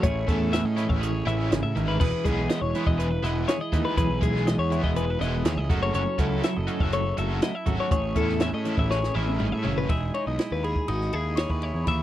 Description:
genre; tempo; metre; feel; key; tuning
math rock and midwest emo; 122 BPM; 4/4; straight; E major; A4 = 439 Hz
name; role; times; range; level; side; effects
twelve-string electric guitar; accompaniment; 0.0-12.0 s; A2 to B4; -30 LUFS; right 5 dB; none
twelve-string electric guitar; arpeggios; 0.0-12.0 s; F#4 to E5; -30 LUFS; left 6 dB; none
crunchy overdriven guitar; riff; 0.0-9.9 s; E3 to F#4; -30 LUFS; left 1 dB; harmonic tremolo
fuzz picked electric bass; bass; 0.0-12.0 s; E1 to A2; -28 LUFS; equal; overdrive
compact cocktail drum kit; drums; 0.0-12.0 s; crash cymbal, hi-hat, kick drum, ride cymbal, snare drum, toms; -27 LUFS; equal; none
glockenspiel with rubber mallets; melody; 10.6-12.0 s; B5 to D#6; -33 LUFS; left 2 dB; none
room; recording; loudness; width
little or no reverb; dry, close 1970s-style studio recording; -23 LUFS; side -13 dB against mid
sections
0.0-9.9 A section; 9.9-12.0 B section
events
drum fill 8.9-9.9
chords
0.0 Amaj7; 2.0 Emaj7; 5.7 F#m7; 7.9 Amaj7; 9.9 Emaj7

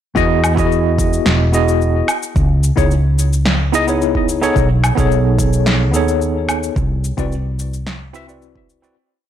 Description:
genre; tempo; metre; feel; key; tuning
sunset chillout; 109 BPM; 4/4; straight; E major; A4 = 441 Hz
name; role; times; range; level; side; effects
tine electric piano; accompaniment; 0.1-9.0 s; B3 to E5; -17 LUFS; left 1 dB; medium stereo tremolo, auto-pan, ping-pong delay
woody fretless electric bass; bass; 0.2-8.9 s; E1 to E2; -16 LUFS; equal; lush chorus
electronic cabasa, woodblock and snare drum; drums; 0.2-8.9 s; none; -20 LUFS; equal; overdrive
electronic kick drum; drums; 0.2-8.7 s; none; -20 LUFS; right 1 dB; overdrive
room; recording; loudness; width
little or no reverb; blown-out, overdriven recording, overdrive; -13 LUFS; side -10 dB against mid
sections
0.2-9.0 chorus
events
fade-out 6.0-9.0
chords
0.2 Emaj9; 2.1 C#m9; 4.6 B13; 6.8 Cmaj9#11

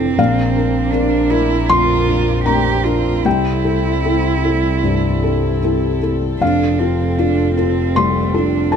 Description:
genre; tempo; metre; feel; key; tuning
neoclassical piano and strings; 77 BPM; 4/4; rubato; F major; A4 = 440 Hz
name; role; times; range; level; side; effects
warm cello; second line; 0.0-8.8 s; A3 to G4; -20 LUFS; right 7 dB; none
felt-muted upright piano; accompaniment; 0.0-8.8 s; Bb1 to C6; -17 LUFS; left 3 dB; none
warm chamber string section; sustained chords; 0.0-8.8 s; E3 to Bb4; -26 LUFS; left 4 dB; none
dark double bass; bass; 0.0-8.8 s; F1 to C2; -20 LUFS; equal; none
room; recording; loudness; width
light reverb; dark, warm production; -14 LUFS; side -7 dB against mid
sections
0.0-8.8 A section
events
none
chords
0.2 Bbadd9; 3.3 C6; 6.4 F

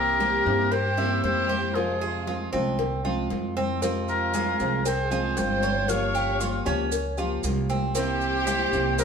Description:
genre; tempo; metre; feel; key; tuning
latin, Cuban son and guajira; 116 BPM; 4/4; straight; F harmonic minor; A4 = 444 Hz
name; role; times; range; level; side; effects
warm oboe; melody; 0.0-9.0 s; Ab4 to G5; -27 LUFS; left 1 dB; none
warm studio violin section; second line; 0.0-9.0 s; F4 to Db5; -32 LUFS; equal; none
nylon-string guitar; accompaniment; 0.0-9.0 s; C3 to G4; -31 LUFS; left 1 dB; none
Cuban tres; arpeggios; 0.0-9.0 s; C4 to Db5; -29 LUFS; right 2 dB; none
upright bass; bass; 0.0-9.0 s; G1 to G2; -30 LUFS; right 1 dB; none
congas; percussion; 0.2-9.0 s; none; -35 LUFS; left 1 dB; none
cowbell; percussion; 0.2-9.0 s; none; -34 LUFS; left 7 dB; none
maracas; percussion; 3.8-9.0 s; none; -38 LUFS; right 6 dB; none
room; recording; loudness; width
wet studio reverb, RT60 0.8 s; band playing live in one room; -23 LUFS; side -6 dB against mid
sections
0.0-9.0 A section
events
none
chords
0.0 C7; 1.8 Fm; 5.9 Gm7b5; 8.0 C7

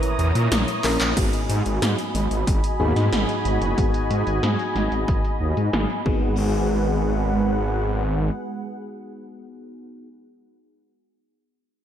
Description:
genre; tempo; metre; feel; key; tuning
synthwave; 92 BPM; 4/4; straight; G# minor; A4 = 440 Hz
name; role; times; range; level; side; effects
growling tenor saxophone; melody; 0.0-0.5 s; E3; -34 LUFS; right 2 dB; none
warm analog pad; sustained chords; 0.0-9.8 s; G#3 to D#6; -27 LUFS; right 1 dB; chorus, sidechain pumping
mellow FM electric piano; stabs; 0.0-10.1 s; G#2 to A#4; -29 LUFS; left 2 dB; chorus, cassette tape, low-pass filter, analog delay
80s electronic pad drums; drums; 0.0-6.2 s; crash cymbal, handclaps, hi-hat, snare drum; -27 LUFS; equal; overdrive, low-pass filter on hats, low-pass filter on snare, low-pass filter on cymbals
wide detuned saw bass; bass; 0.2-8.3 s; F#1 to A#2; -22 LUFS; equal; chorus, sidechain pumping
electronic kick drum; drums; 1.2-6.2 s; none; -24 LUFS; equal; overdrive
room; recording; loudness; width
moderate lush hall reverb, RT60 2.6 s; dreamy mix soaked in reverb; -20 LUFS; side -10 dB against mid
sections
0.0-1.2 A section; 1.2-6.4 B section; 6.4-9.0 C section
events
drum fill 0.8-1.2; filter sweep on drum 1.2-6.4; filter sweep on detuned saw bass 1.2-6.4; filter sweep on FM electric piano 1.2-6.4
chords
0.0 A#dim; 1.2 G#m7

